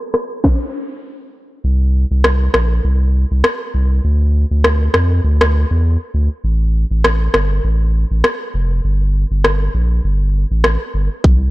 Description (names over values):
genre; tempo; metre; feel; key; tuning
dancehall; 100 BPM; 4/4; swing 56% on 16ths; G dorian; A4 = 439 Hz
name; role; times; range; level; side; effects
island pop drum kit; drums; 0.1-11.4 s; kick drum, rim click, snare drum; -17 LUFS; equal; overdrive, soft clipping on snare, vintage 12-bit sampler grit
saturated sub bass; bass; 1.6-11.5 s; F1 to F2; -14 LUFS; equal; none
room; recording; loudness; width
little or no reverb; blown-out, overdriven recording, overdrive, low-pass filter; -13 LUFS; side -18 dB against mid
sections
0.0-1.6 A section; 1.6-11.5 B section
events
filter sweep 0.0-1.6; kick muted 1.6-11.2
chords
none